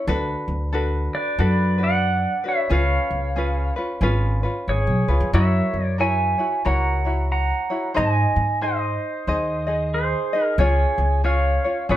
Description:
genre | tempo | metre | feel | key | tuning
Hawaiian | 91 BPM | 4/4 | swing 61% on 8ths | unclear | A4 = 440 Hz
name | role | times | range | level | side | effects
tenor ukulele | accompaniment | 0.0-12.0 s | C#4 to D#5 | -26 LUFS | left 1 dB | none
upright bass | bass | 0.1-12.0 s | G#1 to G#2 | -21 LUFS | equal | none
pedal steel guitar | melody | 1.1-12.0 s | G#4 to A#5 | -23 LUFS | right 1 dB | plate reverb
room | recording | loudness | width
moderate studio reverb, RT60 0.6 s | none | -19 LUFS | side -13 dB against mid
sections
0.0-12.0 A section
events
none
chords
0.1 Bm7/D; 2.7 C#7; 5.3 F#7; 8.0 G#; 10.6 C#

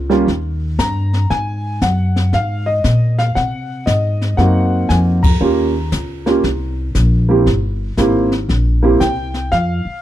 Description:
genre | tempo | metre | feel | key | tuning
jazz piano trio | 117 BPM | 4/4 | swing 66% on 8ths | unclear | A4 = 440 Hz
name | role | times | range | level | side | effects
upright bass | bass | 0.0-9.9 s | G1 to C3 | -16 LUFS | equal | none
warm concert grand piano | melody | 0.1-10.0 s | G3 to Bb5 | -17 LUFS | right 1 dB | none
jazz brush drum kit | drums | 0.1-10.0 s | brushed snare drum, hi-hat, kick drum, ride cymbal, snare drum | -20 LUFS | left 1 dB | none
room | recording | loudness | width
studio ambience | dry, close 1970s-style studio recording | -14 LUFS | side -13 dB against mid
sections
0.0-10.0 A section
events
band accent 5.2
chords
0.3 Eb; 1.3 Ab7; 5.4 Eb7; 7.5 C7

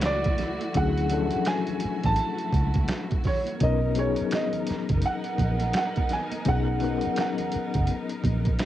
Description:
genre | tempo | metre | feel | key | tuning
R&B, neo-soul | 84 BPM | 4/4 | swing 61% on 16ths | B major | A4 = 441 Hz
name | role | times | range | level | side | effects
dark baby grand piano | melody | 0.0-7.9 s | C#5 to A5 | -30 LUFS | right 3 dB | cassette tape
mellow reed electric piano | accompaniment | 0.0-8.7 s | E#3 to A#4 | -30 LUFS | left 7 dB | fast tremolo, cassette tape
rich symphonic string section | sustained chords | 0.0-8.7 s | E3 to A#4 | -36 LUFS | left 1 dB | cassette tape
vintage muted fingered electric bass | bass | 0.0-8.6 s | F#1 to D2 | -27 LUFS | right 1 dB | none
boom bap sampler-style drum kit | drums | 0.0-8.7 s | finger snaps, hi-hat, kick drum, snare drum | -28 LUFS | right 1 dB | cassette tape
congas | percussion | 0.3-8.7 s | none | -39 LUFS | right 11 dB | none
room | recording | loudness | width
small room ambience | home recording on cassette | -23 LUFS | side -13 dB against mid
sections
0.0-8.7 A section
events
none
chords
0.0 Dmaj9; 3.6 Bmaj9

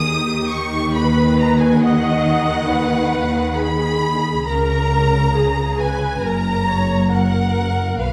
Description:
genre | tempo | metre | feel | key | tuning
cinematic, emotional film score for orchestra | 68 BPM | 4/4 | rubato | unclear | A4 = 440 Hz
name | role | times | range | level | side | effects
rich symphonic violin section | melody | 0.0-8.1 s | E#5 to D#6 | -28 LUFS | equal | none
warm symphonic violin section | second line | 0.0-8.1 s | E#5 to D#6 | -28 LUFS | equal | none
rich symphonic viola section | accompaniment | 0.0-8.1 s | G4 to D#5 | -25 LUFS | equal | none
bright symphonic double bass section | bass | 0.0-8.1 s | F#1 to D#2 | -22 LUFS | equal | none
rich symphonic cello section | bass | 0.0-8.1 s | F#2 to D#3 | -23 LUFS | equal | none
room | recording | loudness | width
moderate scoring stage reverb, RT60 2.0 s | dark, warm production | -18 LUFS | mono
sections
0.0-8.1 A section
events
none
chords
0.0 D#; 4.5 A#m7/C#; 6.3 F#

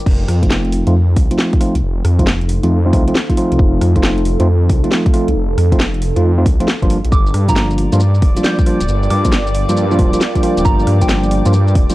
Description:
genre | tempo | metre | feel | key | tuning
UK garage, two-step garage | 136 BPM | 4/4 | swing 66% on 16ths | unclear | A4 = 440 Hz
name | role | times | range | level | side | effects
airy breathy pad | sustained chords | 0.0-0.1, 7.6-11.9 s | D5 to D6 | -25 LUFS | equal | chorus, sidechain pumping
deep dark ambient pad | texture | 0.0-11.9 s | Eb4 to G5 | -25 LUFS | right 1 dB | chorus, built-in reverb, sidechain pumping
dark detuned saw bass | bass | 0.1-11.9 s | D1 to G2 | -15 LUFS | equal | sidechain pumping
electronic kick drum | drums | 0.1-11.9 s | none | -14 LUFS | equal | studio reverb
house drum kit | drums | 0.1-11.9 s | crash cymbal, hi-hat, rim click, shaker, snare drum | -21 LUFS | equal | studio reverb
tine electric piano | stabs | 0.4-11.9 s | F3 to F4 | -18 LUFS | equal | low-pass filter, tape echo
soft synth bell | melody | 7.1-11.2 s | G5 to G6 | -24 LUFS | right 2 dB | chorus, phaser, tape echo
room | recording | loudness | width
digital ambience | dry, gritty hardware recording, transformer saturation, cassette tape | -11 LUFS | side -17 dB against mid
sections
0.1-11.9 A section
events
filter sweep on tine electric piano 0.1-11.9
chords
0.1 F7; 6.9 Gm7

